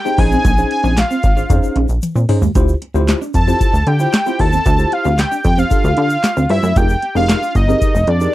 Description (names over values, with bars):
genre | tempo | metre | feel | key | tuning
early-eighties boogie funk | 114 BPM | 4/4 | straight | D minor | A4 = 440 Hz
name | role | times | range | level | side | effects
fat analog lead | melody | 0.0-8.3 s | D5 to A5 | -18 LUFS | equal | slapback echo
tine electric piano | accompaniment | 0.0-8.3 s | Db4 to C5 | -21 LUFS | left 2 dB | overdrive, fast stereo tremolo
clean electric guitar | riff | 0.1-8.2 s | Ab3 to F4 | -22 LUFS | right 3 dB | analog chorus
egg shaker | percussion | 0.1-8.3 s | none | -38 LUFS | left 7 dB | none
plucky analog bass | bass | 0.2-8.3 s | F1 to D3 | -16 LUFS | equal | none
booming analog drum machine | drums | 0.2-8.3 s | handclaps, hi-hat, kick drum, snare drum, toms | -16 LUFS | equal | overdrive
room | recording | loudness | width
little or no reverb | dry, close 1970s-style studio recording | -12 LUFS | side -15 dB against mid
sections
0.0-8.3 A section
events
drum fill 2.0-2.6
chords
0.2 Bbm11; 2.6 Dm11; 6.8 Fm11